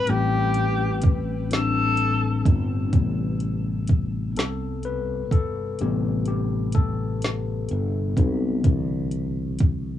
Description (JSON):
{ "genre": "slow six-eight R&B", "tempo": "42 BPM (dotted quarters)", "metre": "6/8", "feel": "straight", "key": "A minor", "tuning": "A4 = 440 Hz", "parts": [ { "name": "warm tenor saxophone", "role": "melody", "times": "0.0-2.5 s", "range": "G4 to B4", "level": "-26 LUFS", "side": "left 2 dB", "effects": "tape echo" }, { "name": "tine electric piano", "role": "accompaniment", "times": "0.0-10.0 s", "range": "A2 to B4", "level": "-27 LUFS", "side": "left 6 dB", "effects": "phaser" }, { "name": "sustaining fretless electric bass", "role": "bass", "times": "0.0-10.0 s", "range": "G1 to C2", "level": "-26 LUFS", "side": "right 1 dB", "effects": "none" }, { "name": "smooth R&B drum kit", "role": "drums", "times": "0.1-9.8 s", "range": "hi-hat, kick drum, snare drum", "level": "-20 LUFS", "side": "equal", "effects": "cassette tape" } ], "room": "little or no reverb", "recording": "home recording on cassette", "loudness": "-21 LUFS", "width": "side -11 dB against mid", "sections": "0.0-2.9 A section; 2.9-10.0 B section", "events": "tine electric piano solo 2.9-10.0", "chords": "0.0 Am9; 2.9 Am7; 8.6 Cmaj7" }